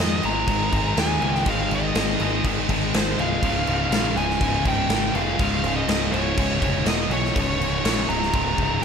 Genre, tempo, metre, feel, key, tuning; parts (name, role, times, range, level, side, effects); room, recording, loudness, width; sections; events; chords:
heavy metal; 122 BPM; 4/4; straight; A4 = 437 Hz
high-gain lead guitar; melody; 0.0-8.8 s; C5 to Bb5; -26 LUFS; equal; distortion, tape echo
high-gain distorted guitar; riff; 0.0-8.8 s; Db2 to Ab3; -28 LUFS; left 10 dB; distortion, slapback echo
high-gain distorted guitar; riff; 0.0-8.8 s; Db2 to Ab3; -28 LUFS; right 10 dB; distortion, slapback echo
thick fuzz guitar; riff; 0.0-8.8 s; Db2 to Ab3; -30 LUFS; left 1 dB; distortion
growling picked electric bass; bass; 0.0-8.8 s; C1 to F2; -28 LUFS; equal; overdrive
big rock drum kit; drums; 0.0-8.7 s; crash cymbal, kick drum, snare drum; -25 LUFS; equal
moderate lush hall reverb, RT60 2.1 s; big arena sound; -19 LUFS; side -6 dB against mid
0.0-8.8 A section
0.0 Ab5; 3.4 Db; 6.9 E5; 7.4 Db5